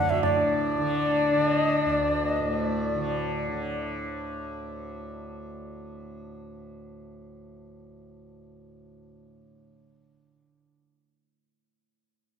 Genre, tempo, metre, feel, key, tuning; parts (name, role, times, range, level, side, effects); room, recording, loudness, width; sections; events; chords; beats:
indian classical; 116 BPM; 7/4; straight; A4 = 440 Hz
bright reedy bansuri; melody; 0.0-3.8 s; D5 to F#5; -27 LUFS; left 4 dB
tanpura; drone; 0.0-10.6 s; D2 to D3; -33 LUFS; right 2 dB
dark sarangi; second line; 0.1-4.0 s; D4 to F#4; -29 LUFS; equal
wet recital hall reverb, RT60 1.6 s; minimal, uncompressed stereo recording; -24 LUFS; side -7 dB against mid
0.2-3.8 A section
| 0.23 0.75 1.26 1.78 2.29 2.81 3.32